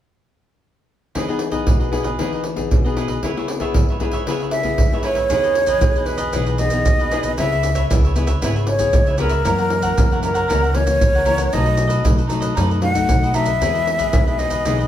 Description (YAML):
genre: samba and choro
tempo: 116 BPM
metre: 4/4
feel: straight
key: E major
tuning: A4 = 438 Hz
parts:
  - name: cavaquinho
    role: accompaniment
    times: 1.1-14.9 s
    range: D#4 to F#5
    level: -27 LUFS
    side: right 3 dB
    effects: none
  - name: nylon-string guitar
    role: accompaniment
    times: 1.2-14.9 s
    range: F#2 to G#4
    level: -24 LUFS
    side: left 5 dB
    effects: none
  - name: surdo, pandeiro and maracas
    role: percussion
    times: 1.2-14.9 s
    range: none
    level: -20 LUFS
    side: right 1 dB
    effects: none
  - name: breathy concert flute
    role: melody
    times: 4.5-14.9 s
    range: A#4 to F#5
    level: -20 LUFS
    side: equal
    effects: none
  - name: upright bass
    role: bass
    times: 5.3-14.9 s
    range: G#1 to F#2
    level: -22 LUFS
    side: equal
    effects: none
room: wet large studio reverb, RT60 0.9 s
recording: heard from further back in the room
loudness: -16 LUFS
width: side -11 dB against mid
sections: 1.2-5.3 A section; 5.3-14.9 B section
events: none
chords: 1.2 Emaj7; 3.2 C#m7; 5.3 Emaj7; 7.4 C#m7; 9.5 F#7; 11.5 B7; 13.6 Emaj7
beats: | 1.15 1.67 2.19 2.71 | 3.23 3.75 4.27 4.79 | 5.31 5.83 6.34 6.86 | 7.38 7.90 8.42 8.94 | 9.46 9.98 10.50 11.02 | 11.54 12.05 12.57 13.10 | 13.61 14.13 14.65